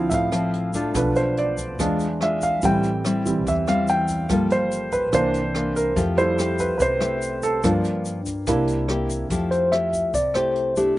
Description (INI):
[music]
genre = bossa nova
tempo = 144 BPM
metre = 4/4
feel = straight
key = F major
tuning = A4 = 440 Hz
[part]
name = clear concert grand piano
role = accompaniment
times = 0.0-9.3 s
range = E3 to G5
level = -22 LUFS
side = right 2 dB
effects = slapback echo
[part]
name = nylon-string guitar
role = accompaniment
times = 0.0-11.0 s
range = G2 to A4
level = -25 LUFS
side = left 2 dB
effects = none
[part]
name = upright bass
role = bass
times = 0.0-10.9 s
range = G1 to G2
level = -31 LUFS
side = left 1 dB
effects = none
[part]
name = jazz brush drum kit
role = drums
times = 0.1-10.9 s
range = hi-hat, kick drum, rim click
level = -32 LUFS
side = equal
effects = none
[part]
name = egg shaker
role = percussion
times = 0.1-11.0 s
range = none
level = -38 LUFS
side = left 4 dB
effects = none
[part]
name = mellow tine electric piano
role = melody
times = 9.5-11.0 s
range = G4 to E5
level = -20 LUFS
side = left 1 dB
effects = none
[sound]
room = little or no reverb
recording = recorded outdoors, with no room sound, nothing above 10.7 kHz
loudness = -20 LUFS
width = side -16 dB against mid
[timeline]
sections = 0.0-9.3 A section; 9.3-11.0 B section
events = grand piano solo 0.0-9.3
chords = 0.0 Dm9; 1.0 Bm7b5; 1.8 E7b9; 2.6 Am7; 4.3 Gm9; 5.1 C9; 6.0 Fmaj9; 7.6 Gm7; 8.5 C7; 9.3 Fmaj9